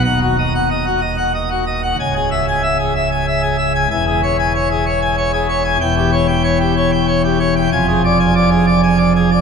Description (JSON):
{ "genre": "classical, organ toccata", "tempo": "94 BPM", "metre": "3/4", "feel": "straight", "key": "unclear", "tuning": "A4 = 440 Hz", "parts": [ { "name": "pipe organ, plenum", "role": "solo", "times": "0.0-9.4 s", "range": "C#1 to G#5", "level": "-13 LUFS", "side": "equal", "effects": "none" } ], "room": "wet cathedral reverb, RT60 4.6 s", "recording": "minimal, uncompressed stereo recording", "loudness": "-13 LUFS", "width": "side -6 dB against mid", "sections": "0.0-9.4 A section", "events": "none", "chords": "0.1 D#m; 2.0 C#m; 3.9 C#m/E; 5.8 C#dim/E; 7.7 Fm6" }